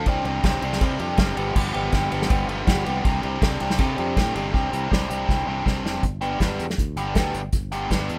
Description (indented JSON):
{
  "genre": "indie rock",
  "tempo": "161 BPM",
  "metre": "4/4",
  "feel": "straight",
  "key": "unclear",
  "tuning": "A4 = 445 Hz",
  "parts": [
    { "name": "biting overdriven guitar", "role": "riff", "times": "0.0-8.2 s", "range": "G2 to G4", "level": "-27 LUFS", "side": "equal", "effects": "none" },
    { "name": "fingered electric bass", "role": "bass", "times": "0.0-8.2 s", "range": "F1 to C3", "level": "-32 LUFS", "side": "equal", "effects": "none" },
    { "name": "unplugged drum kit", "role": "drums", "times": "0.1-8.2 s", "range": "crash cymbal, hi-hat, kick drum, ride cymbal, snare drum", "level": "-25 LUFS", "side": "equal", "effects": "none" }
  ],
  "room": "little or no reverb",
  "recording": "rough home demo mix",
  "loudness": "-23 LUFS",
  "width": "mono",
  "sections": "0.0-4.5 A section; 4.5-6.0 B section; 6.0-8.2 C section",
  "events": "drum fill 5.3-6.0",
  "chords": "0.1 Csus2; 1.4 G7; 3.0 Csus2; 6.0 G"
}